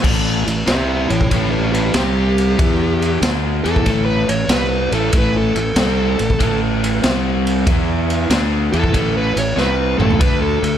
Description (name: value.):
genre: blues rock power trio and southern rock.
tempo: 94 BPM.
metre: 4/4.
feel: swing 68% on 8ths.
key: unclear.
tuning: A4 = 441 Hz.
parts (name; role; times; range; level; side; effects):
crunchy overdriven guitar; riff; 0.0-10.8 s; A2 to E4; -19 LUFS; equal; none.
fuzz fingered electric bass; bass; 0.0-10.8 s; A1 to E2; -20 LUFS; equal; overdrive.
raw garage drum kit; drums; 0.0-10.7 s; crash cymbal, kick drum, ride cymbal, snare drum, toms; -19 LUFS; equal; none.
dark smooth lead guitar; melody; 0.7-10.8 s; E4 to E5; -21 LUFS; equal; overdrive.
room: light reverb.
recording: none.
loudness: -14 LUFS.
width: side -10 dB against mid.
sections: 0.0-10.8 A section.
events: lead electric guitar solo 0.0-10.8; drum fill 9.6-10.2.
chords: 0.0 A5; 1.9 C5; 2.6 E5; 3.2 A5; 7.0 C5; 7.7 E5; 8.3 A5; 10.2 D5.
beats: | 0.04 0.68 1.31 1.95 | 2.59 3.22 3.86 4.50 | 5.13 5.77 6.40 7.04 | 7.67 8.31 8.94 9.57 | 10.21.